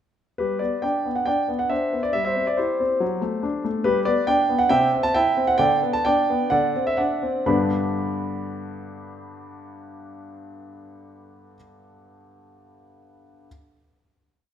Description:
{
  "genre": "classical-period piano sonatina",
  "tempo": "122-141 BPM",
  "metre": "4/4",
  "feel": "rubato",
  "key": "G major",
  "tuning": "A4 = 440 Hz",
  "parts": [
    { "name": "clear grand piano", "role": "solo", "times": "0.4-13.5 s", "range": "G2 to B5", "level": "-21 LUFS", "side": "equal", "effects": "none" }
  ],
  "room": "wet recital hall reverb, RT60 1.6 s",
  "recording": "none",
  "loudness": "-20 LUFS",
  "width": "side -9 dB against mid",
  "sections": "0.4-7.5 A section; 7.5-11.3 final chord",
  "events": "slowing down 3.0-7.5",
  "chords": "0.4 G; 2.1 C/G; 3.0 D7/F#; 3.9 G; 4.7 C; 5.6 G/D; 6.5 D7; 7.5 G"
}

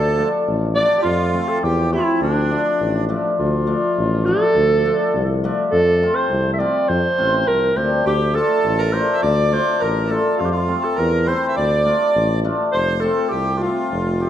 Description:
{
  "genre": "klezmer",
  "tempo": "103 BPM",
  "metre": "2/4",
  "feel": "straight",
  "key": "D minor",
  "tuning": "A4 = 444 Hz",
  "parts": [
    { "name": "warm clarinet", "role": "melody", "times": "0.0-14.3 s", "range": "D4 to E5", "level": "-19 LUFS", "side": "equal", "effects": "none" },
    { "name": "accordion", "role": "second line", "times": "0.0-3.0, 8.0-14.3 s", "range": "D4 to E5", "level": "-26 LUFS", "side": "right 4 dB", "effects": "none" },
    { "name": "cimbalom", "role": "accompaniment", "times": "0.0-14.3 s", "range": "F3 to G4", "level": "-22 LUFS", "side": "left 2 dB", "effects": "none" },
    { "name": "warm tuba", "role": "bass", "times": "0.0-14.3 s", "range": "F1 to F2", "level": "-22 LUFS", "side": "equal", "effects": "none" }
  ],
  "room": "moderate recital hall reverb, RT60 1.4 s",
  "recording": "dark, warm production",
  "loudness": "-16 LUFS",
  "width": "side -10 dB against mid",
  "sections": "0.0-3.4 A section; 3.4-12.7 A section; 12.7-14.3 B section",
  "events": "none",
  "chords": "0.0 Dm; 1.0 F; 2.2 Dm; 10.4 F; 11.6 Dm; 12.7 F"
}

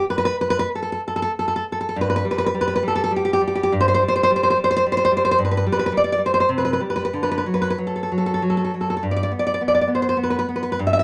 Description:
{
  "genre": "romantic piece for solo classical guitar",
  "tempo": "92-114 BPM",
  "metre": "3/4",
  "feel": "rubato",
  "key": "G major",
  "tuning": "A4 = 440 Hz",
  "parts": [
    { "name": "nylon-string guitar", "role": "solo", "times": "0.0-11.0 s", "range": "G2 to E5", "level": "-20 LUFS", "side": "equal", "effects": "none" }
  ],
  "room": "moderate studio ambience, RT60 0.5 s",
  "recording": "none",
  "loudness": "-21 LUFS",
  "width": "mono",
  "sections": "0.0-1.9 A section; 1.9-11.0 B section",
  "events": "none",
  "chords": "0.0 N.C.; 6.5 C5; 7.1 D; 9.0 G"
}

